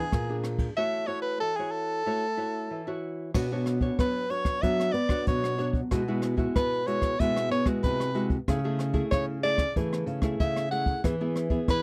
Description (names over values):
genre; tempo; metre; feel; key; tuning
samba and choro; 94 BPM; 4/4; straight; A major; A4 = 440 Hz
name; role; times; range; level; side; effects
breathy soprano saxophone; melody; 0.0-11.8 s; G#4 to F#5; -31 LUFS; equal; none
nylon-string guitar; accompaniment; 0.0-11.8 s; B2 to C#5; -35 LUFS; equal; none
nylon-string guitar; bass; 0.0-11.8 s; Bb2 to B3; -32 LUFS; equal; none
jazz brush drum kit; drums; 0.1-11.8 s; crash cymbal, hi-hat, kick drum, ride cymbal, rim click; -32 LUFS; equal; none
room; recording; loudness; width
little or no reverb; dry, close 1970s-style studio recording; -28 LUFS; mono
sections
0.0-3.3 A section; 3.3-11.8 B section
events
none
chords
0.0 E7; 0.8 A6; 3.3 Bmadd9; 5.9 Eadd9/B; 8.5 Amaj7/C#; 11.0 E